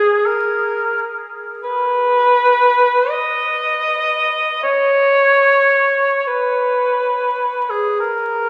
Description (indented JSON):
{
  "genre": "classical, free, expressive piece for unaccompanied cor anglais",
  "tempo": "32-44 BPM (dotted quarters)",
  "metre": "6/8",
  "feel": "rubato",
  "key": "unclear",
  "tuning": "A4 = 440 Hz",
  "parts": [
    { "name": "mellow cor anglais", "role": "solo", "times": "0.0-8.5 s", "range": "Ab4 to Eb5", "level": "-16 LUFS", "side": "equal", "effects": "none" }
  ],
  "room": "wet cathedral reverb, RT60 5.2 s",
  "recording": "recorded on a phone in the room, club reverb, vinyl crackle",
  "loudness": "-16 LUFS",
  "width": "mono",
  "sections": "0.0-8.5 A section",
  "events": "none",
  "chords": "none"
}